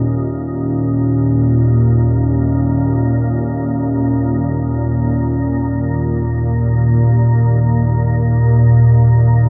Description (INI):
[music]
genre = world meditative, free-time meditation music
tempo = free time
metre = none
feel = none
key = unclear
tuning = A4 = 440 Hz
[part]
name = organ-like drone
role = drone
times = 0.0-9.5 s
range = Eb2 to Bb2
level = -15 LUFS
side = equal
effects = ensemble chorus, built-in reverb
[part]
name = glass harmonica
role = texture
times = 0.0-5.6 s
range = Db4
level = -23 LUFS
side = equal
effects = none
[sound]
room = wet cathedral reverb, RT60 4.7 s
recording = none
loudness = -15 LUFS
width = mono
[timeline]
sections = 0.0-9.5 A section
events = none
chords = none